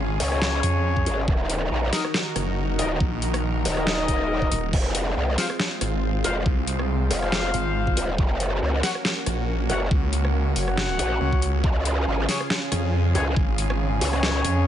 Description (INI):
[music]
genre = heavy wobble dubstep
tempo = 139 BPM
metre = 4/4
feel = swing 55% on 16ths, half-time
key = unclear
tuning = A4 = 440 Hz
[part]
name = lush unison pad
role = sustained chords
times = 0.0-14.7 s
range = Db3 to Bb4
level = -30 LUFS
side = equal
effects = chorus, sidechain pumping
[part]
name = snarling distorted saw bass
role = bass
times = 0.0-14.7 s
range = Eb1 to F2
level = -24 LUFS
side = equal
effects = overdrive
[part]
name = mellow brass ensemble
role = stabs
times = 0.2-14.7 s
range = Db4 to Gb5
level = -30 LUFS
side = left 3 dB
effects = tape echo
[part]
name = growl bass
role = bass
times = 0.2-14.4 s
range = Eb1 to Db2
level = -24 LUFS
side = equal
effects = chorus, overdrive
[part]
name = dubstep drum kit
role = drums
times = 0.2-14.5 s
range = crash cymbal, hi-hat, rim click, snare drum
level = -27 LUFS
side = equal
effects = overdrive
[part]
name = electronic kick drum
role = drums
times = 1.0-13.5 s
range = none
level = -23 LUFS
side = equal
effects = overdrive
[sound]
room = digital ambience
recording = nothing above 10.8 kHz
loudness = -21 LUFS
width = side -10 dB against mid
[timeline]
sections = 0.0-14.7 A section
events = none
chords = 0.0 Db; 1.3 Ebm; 4.7 Fm; 8.2 Gb; 11.6 Db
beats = 0.41 0.85 | 1.28 1.71 2.14 2.57 | 3.00 3.44 3.87 4.30 | 4.73 5.16 5.59 6.03 | 6.46 6.89 7.32 7.75 | 8.19 8.62 9.05 9.48 | 9.91 10.34 10.78 11.21 | 11.64 12.07 12.50 12.93 | 13.37 13.80 14.23 14.66